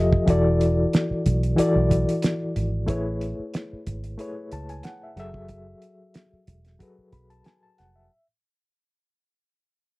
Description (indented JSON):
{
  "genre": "lush 1970s-style soul",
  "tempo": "92 BPM",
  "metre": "4/4",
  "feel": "swing 54% on 16ths",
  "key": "F# minor",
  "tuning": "A4 = 442 Hz",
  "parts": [
    { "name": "reed electric piano", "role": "accompaniment", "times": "0.0-8.3 s", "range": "E3 to B5", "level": "-24 LUFS", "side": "left 1 dB", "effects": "fast tremolo" },
    { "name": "vintage muted fingered electric bass", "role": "bass", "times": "0.0-8.1 s", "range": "E1 to C#2", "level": "-25 LUFS", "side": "right 1 dB", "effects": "none" },
    { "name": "cloth-damped thuddy drum kit", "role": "drums", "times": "0.1-7.9 s", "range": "hi-hat, kick drum, snare drum", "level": "-23 LUFS", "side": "right 1 dB", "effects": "none" }
  ],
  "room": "little or no reverb",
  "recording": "dry, close 1970s-style studio recording",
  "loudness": "-20 LUFS",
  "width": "side -22 dB against mid",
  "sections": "0.0-8.1 A section",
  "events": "fade-out 0.0-8.1",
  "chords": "0.3 E7sus4; 2.9 Amaj9; 5.2 F#m7",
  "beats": "| 0.28 0.93 1.58 2.24 | 2.89 3.54 4.19 4.84 | 5.50 6.15 6.80 7.45"
}